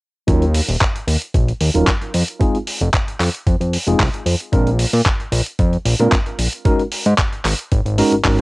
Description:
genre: nu-disco, nu disco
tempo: 113 BPM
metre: 4/4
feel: swing 53% on 16ths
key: Eb dorian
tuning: A4 = 440 Hz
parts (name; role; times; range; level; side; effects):
- tine electric piano; accompaniment; 0.3-8.4 s; Gb3 to Bb4; -18 LUFS; equal; medium stereo tremolo, sidechain pumping, low-pass filter, cassette tape, tape echo
- fat analog bass; bass; 0.3-8.4 s; Eb1 to Bb2; -17 LUFS; equal; none
- dusty soul sampler-style drum kit; drums; 0.3-8.4 s; handclaps, hi-hat; -21 LUFS; equal; none
- electronic kick drum; drums; 0.3-8.4 s; none; -18 LUFS; equal; none
room: light reverb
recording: home recording on cassette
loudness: -15 LUFS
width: side -23 dB against mid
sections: 0.3-8.4 A section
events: filter sweep on tine electric piano 0.3-8.4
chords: 0.3 Ebm7; 2.1 Fm7; 4.5 Bb7; 6.7 Ab7sus4

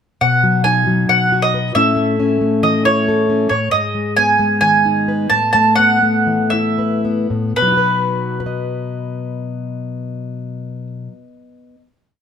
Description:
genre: indie folk with a building arrangement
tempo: 109-136 BPM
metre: 4/4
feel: straight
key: B mixolydian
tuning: A4 = 440 Hz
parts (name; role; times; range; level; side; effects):
- mandolin; melody; 0.2-10.9 s; B4 to A5; -15 LUFS; right 2 dB; plate reverb
- fingerpicked plugged-in steel-string acoustic guitar; accompaniment; 0.2-11.8 s; G#2 to D#5; -18 LUFS; left 2 dB; none
room: moderate studio reverb, RT60 0.8 s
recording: none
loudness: -13 LUFS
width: side -7 dB against mid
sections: 0.2-7.6 verse; 7.6-12.0 final chord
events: slowing down 3.7-7.6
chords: 0.2 B; 1.8 A; 3.7 G#m; 5.3 Asus2; 7.6 B

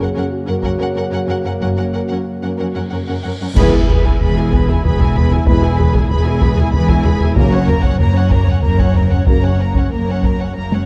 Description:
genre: cinematic, epic orchestral film score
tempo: 94 BPM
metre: 3/4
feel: straight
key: F# mixolydian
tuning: A4 = 440 Hz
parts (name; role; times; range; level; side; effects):
- warm symphonic violin section; melody; 0.0-10.9 s; F#5 to B5; -30 LUFS; equal; none
- warm symphonic violin section; second line; 0.0-10.9 s; G#4 to C#5; -28 LUFS; equal; none
- warm symphonic viola section; accompaniment; 0.0-10.9 s; A#3 to G#4; -27 LUFS; equal; none
- dark trombone section; sustained chords; 0.0-9.5 s; C#3 to A#3; -27 LUFS; equal; none
- mellow French horn section; sustained chords; 0.0-9.5 s; A#3 to G#4; -26 LUFS; equal; none
- rich symphonic cello section; bass; 0.0-10.9 s; E2 to F#2; -22 LUFS; equal; none
- solo taiko drums; drums; 0.6-10.9 s; none; -18 LUFS; equal; none
- rich symphonic double bass section; bass; 1.6-10.9 s; E1 to F#1; -22 LUFS; equal; none
- cymbal swell and impact; sound effects; 3.0-5.5 s; none; -33 LUFS; equal; none
- clash cymbals and concert bass drum; percussion; 3.6-4.8 s; none; -23 LUFS; equal; none
- timpani; percussion; 7.4-8.3 s; F#2; -25 LUFS; equal; none
room: moderate scoring stage reverb, RT60 1.5 s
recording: dark, warm production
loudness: -15 LUFS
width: mono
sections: 0.0-3.6 A section; 3.6-10.9 B section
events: cymbal swell 3.0-3.6; band accent 3.6-4.2; impact 3.6-5.5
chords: 0.0 F#; 3.6 E; 7.4 F#

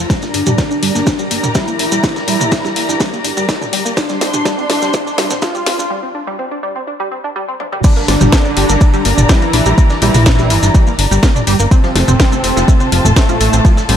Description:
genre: melodic techno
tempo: 124 BPM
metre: 4/4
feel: straight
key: G dorian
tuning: A4 = 439 Hz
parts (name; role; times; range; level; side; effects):
- dark chamber string section; sustained chords; 0.0-14.0 s; F4 to C6; -21 LUFS; left 2 dB; sidechain pumping
- tight sequenced synth; arpeggios; 0.0-14.0 s; F3 to D5; -20 LUFS; equal; chorus, sidechain pumping, tape echo
- fat analog bass; bass; 0.0-14.0 s; F1 to D2; -16 LUFS; equal; sidechain pumping
- wide unison lead; melody; 0.1-14.0 s; G3 to F4; -19 LUFS; equal; sidechain pumping, tape echo
- breakbeat sampler-style drum kit; drums; 0.1-14.0 s; hi-hat, ride cymbal, snare drum; -29 LUFS; right 2 dB; none
- electronic kick drum; drums; 0.1-13.7 s; none; -12 LUFS; equal; overdrive
- house drum kit; drums; 0.1-14.0 s; crash cymbal, hi-hat, snare drum, toms; -17 LUFS; left 1 dB; none
- maracas; percussion; 0.1-13.9 s; none; -24 LUFS; right 2 dB; none
- soft supersaw; second line; 7.8-14.0 s; G2 to E3; -23 LUFS; right 1 dB; vintage 12-bit sampler grit, sidechain pumping, tape echo
room: light reverb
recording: high-pass filter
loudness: -11 LUFS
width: side -9 dB against mid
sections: 0.0-7.8 A section; 7.8-14.0 B section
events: build-up 0.0-7.8; filter sweep on synth arpeggio sound 0.0-7.8; filter sweep on analog synth lead 0.0-7.8; filter sweep 0.0-7.8; drum fill 0.1-5.9, 7.6; break 5.9-7.8; drop 7.8-14.0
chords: 0.1 Gm; 4.0 Csus2; 7.8 Gm; 11.7 F

